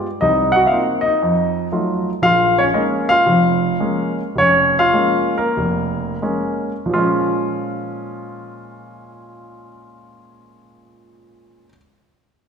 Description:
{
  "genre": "solo jazz",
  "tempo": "82-118 BPM",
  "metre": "4/4",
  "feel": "swing 68% on 8ths",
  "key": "Bb minor",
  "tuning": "A4 = 442 Hz",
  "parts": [
    { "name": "warm grand piano", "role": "solo", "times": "0.0-11.8 s", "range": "F1 to Gb5", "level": "-15 LUFS", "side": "equal", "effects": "none" }
  ],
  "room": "wet scoring stage reverb, RT60 2.0 s",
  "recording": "recorded in a church or concert hall",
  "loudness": "-15 LUFS",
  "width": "side -6 dB against mid",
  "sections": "0.0-6.9 A section; 6.9-12.5 B section",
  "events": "slowing down 2.2-6.9",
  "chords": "0.2 Cm7b5; 1.2 F7b9; 2.2 Bbm7",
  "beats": "| 0.20 0.71 1.22 1.72 | 2.23 2.75 3.27 3.80 | 4.36 4.94 5.55 6.21 | 6.91 7.64 8.37 9.10 | 9.83 10.56 11.29"
}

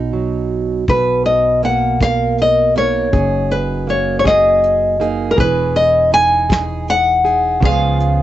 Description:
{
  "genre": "folk",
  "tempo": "53 BPM (dotted quarters)",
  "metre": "6/8",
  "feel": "straight",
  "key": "unclear",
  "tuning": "A4 = 440 Hz",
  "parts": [
    { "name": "nylon-string guitar", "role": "melody", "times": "0.0-8.2 s", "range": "F#4 to G#5", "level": "-14 LUFS", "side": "left 1 dB", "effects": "cassette tape" },
    { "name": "fingerpicked plugged-in steel-string acoustic guitar", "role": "accompaniment", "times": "0.0-8.2 s", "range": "F#2 to A#4", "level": "-20 LUFS", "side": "right 6 dB", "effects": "cassette tape" },
    { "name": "upright bass", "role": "bass", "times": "0.0-8.2 s", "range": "E1 to C#2", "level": "-22 LUFS", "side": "left 1 dB", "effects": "none" },
    { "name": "soft brush drum kit", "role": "drums", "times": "0.9-8.2 s", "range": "hi-hat, kick drum, rim click, snare drum", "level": "-18 LUFS", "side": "left 1 dB", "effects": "cassette tape" }
  ],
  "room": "light reverb",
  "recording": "home recording on cassette, nothing above 7.9 kHz",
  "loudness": "-12 LUFS",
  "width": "side -13 dB against mid",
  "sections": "0.9-8.2 A section",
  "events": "none",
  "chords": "0.0 B; 0.9 Bmaj7; 3.1 F#69; 5.4 Emaj7; 7.6 C#7",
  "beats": "| 0.89 2.01 | 3.13 4.26 | 5.38 6.50 | 7.63"
}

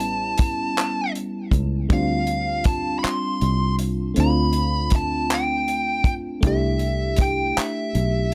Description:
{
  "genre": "slow six-eight R&B",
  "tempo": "53 BPM (dotted quarters)",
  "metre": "6/8",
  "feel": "straight",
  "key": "D dorian",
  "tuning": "A4 = 440 Hz",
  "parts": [
    { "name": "fuzz lead guitar", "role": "melody", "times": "0.0-8.3 s", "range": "E5 to C6", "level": "-28 LUFS", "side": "equal", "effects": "distortion" },
    { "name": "FM electric piano", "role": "accompaniment", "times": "0.0-8.3 s", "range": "G3 to G4", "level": "-28 LUFS", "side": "equal", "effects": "chorus" },
    { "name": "fingered electric bass", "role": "bass", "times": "0.0-8.3 s", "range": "A1 to D2", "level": "-26 LUFS", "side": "equal", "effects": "none" },
    { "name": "damped 70s drum kit", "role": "drums", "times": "0.0-8.1 s", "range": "handclaps, hi-hat, kick drum", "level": "-24 LUFS", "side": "equal", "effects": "none" }
  ],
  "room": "light reverb",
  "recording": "none",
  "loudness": "-22 LUFS",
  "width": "mono",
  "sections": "0.0-8.3 A section",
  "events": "none",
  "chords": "0.0 A7; 1.9 Dm7; 4.2 G9sus4/D; 6.4 C6",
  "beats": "0.77 | 1.90 3.03 | 4.16 5.29 | 6.43 7.56"
}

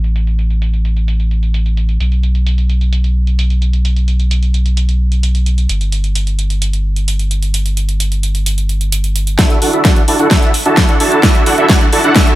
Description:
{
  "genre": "EDM, festival progressive house",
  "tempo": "130 BPM",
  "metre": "4/4",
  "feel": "straight",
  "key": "D major",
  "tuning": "A4 = 440 Hz",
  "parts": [
    { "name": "saturated sub bass", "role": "bass", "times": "0.0-9.4 s", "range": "G1 to B1", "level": "-13 LUFS", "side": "equal", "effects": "sidechain pumping" },
    { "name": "big-room dance drum kit", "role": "drums", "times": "0.0-12.4 s", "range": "hi-hat, snare drum", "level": "-18 LUFS", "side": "equal", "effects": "low-pass filter on hats, low-pass filter on snare, low-pass filter on room" },
    { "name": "dense compressed supersaw", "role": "riff", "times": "9.4-12.4 s", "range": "D4 to A5", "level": "-12 LUFS", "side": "right 1 dB", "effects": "cassette tape, sidechain pumping, low-pass filter, tape echo" },
    { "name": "electronic kick drum", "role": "drums", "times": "9.4-12.2 s", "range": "none", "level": "-11 LUFS", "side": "equal", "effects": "none" }
  ],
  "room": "little or no reverb",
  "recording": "low-pass filter",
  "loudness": "-11 LUFS",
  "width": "side -16 dB against mid",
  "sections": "0.0-9.4 A section; 9.4-12.4 B section",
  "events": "filter sweep 0.0-9.4; build-up 9.4-12.4; drum fill 9.4-12.4; filter sweep on supersaw synth 9.4-12.4",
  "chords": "0.0 N.C.; 9.4 Dadd9",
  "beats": "| 0.16 0.62 1.08 1.54 | 2.00 2.46 2.93 3.39 | 3.85 4.31 4.77 5.23 | 5.70 6.16 6.62 7.08 | 7.54 8.00 8.46 8.93 | 9.39 9.85 10.31 10.77 | 11.23 11.70 12.16"
}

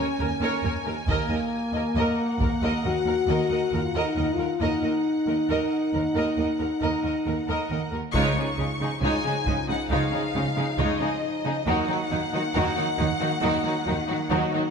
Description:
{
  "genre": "cinematic, epic orchestral film score",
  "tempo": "68 BPM",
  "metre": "4/4",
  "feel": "straight",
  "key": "Eb minor",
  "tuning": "A4 = 440 Hz",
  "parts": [
    { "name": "rich symphonic violin section", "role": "melody", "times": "0.0-14.7 s", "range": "Eb5 to Db6", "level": "-33 LUFS", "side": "left 4 dB", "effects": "none" },
    { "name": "warm symphonic violin section", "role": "second line", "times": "0.0-14.6 s", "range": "Bb3 to Eb5", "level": "-32 LUFS", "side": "left 1 dB", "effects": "none" },
    { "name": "rich symphonic viola section", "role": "accompaniment", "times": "0.0-14.6 s", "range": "Gb3 to Bb4", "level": "-30 LUFS", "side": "right 1 dB", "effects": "none" },
    { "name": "warm French horn section", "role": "sustained chords", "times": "0.0-14.7 s", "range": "F3 to Gb4", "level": "-28 LUFS", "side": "left 2 dB", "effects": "none" },
    { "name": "rich symphonic cello section", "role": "bass", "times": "0.0-14.6 s", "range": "Eb2 to Eb3", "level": "-31 LUFS", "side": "right 3 dB", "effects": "none" },
    { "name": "rich symphonic double bass section", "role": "bass", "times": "0.2-14.4 s", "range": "Db2 to Eb2", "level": "-31 LUFS", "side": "right 3 dB", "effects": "none" },
    { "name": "taiko ensemble", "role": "drums", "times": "1.1-2.8, 8.1-9.9 s", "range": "none", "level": "-31 LUFS", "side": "equal", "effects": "none" }
  ],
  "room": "wet scoring stage reverb, RT60 1.7 s",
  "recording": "none",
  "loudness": "-23 LUFS",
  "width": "side -6 dB against mid",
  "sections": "0.0-8.1 A section; 8.1-14.7 B section",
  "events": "band accent 8.1-9.0",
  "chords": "0.0 Bbm7/Eb; 1.1 Ebm; 8.1 Dbadd9; 11.7 Ebm",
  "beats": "0.20 | 1.08 1.97 2.85 3.73 | 4.61 5.50 6.38 7.26 | 8.14 9.02 9.91 10.79 | 11.67 12.55 13.44 14.32"
}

